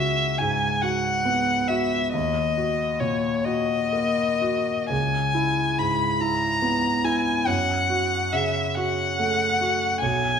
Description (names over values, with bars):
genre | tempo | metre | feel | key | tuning
classical, impressionist duo for violin and grand piano | 40-50 BPM (dotted quarters) | 6/8 | rubato | C# dorian | A4 = 440 Hz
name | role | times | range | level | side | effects
rich violin | melody | 0.0-10.4 s | C#5 to B5 | -23 LUFS | left 2 dB | none
clear grand piano | accompaniment | 0.0-10.4 s | B1 to F#4 | -25 LUFS | right 1 dB | none
room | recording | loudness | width
wet recital hall reverb, RT60 1.6 s | none | -21 LUFS | side -7 dB against mid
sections
0.0-10.4 A section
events
none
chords
0.0 C#m7; 2.1 D#m; 4.9 C#m7; 7.5 F#m